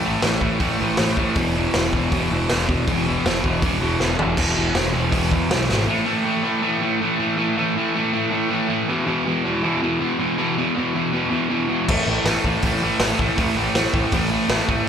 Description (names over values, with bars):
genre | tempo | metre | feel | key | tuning
punk rock | 160 BPM | 4/4 | straight | unclear | A4 = 445 Hz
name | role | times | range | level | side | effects
distorted electric guitar | riff | 0.0-14.9 s | E2 to A3 | -20 LUFS | equal | distortion, slapback echo
growling picked electric bass | bass | 0.0-5.9, 11.9-14.8 s | E1 to E2 | -24 LUFS | equal | overdrive
raw garage drum kit | drums | 0.2-5.8, 11.9-14.8 s | crash cymbal, hi-hat, kick drum, snare drum, toms | -23 LUFS | equal | none
room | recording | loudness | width
little or no reverb | live gig heard through the venue's PA, club ambience | -18 LUFS | side -8 dB against mid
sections
0.0-4.4 A section; 4.4-5.9 B section; 5.9-14.9 C section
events
drum fill 4.0-4.4, 5.7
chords
0.0 A5; 1.4 E5; 5.9 A5; 8.9 E5; 11.9 A5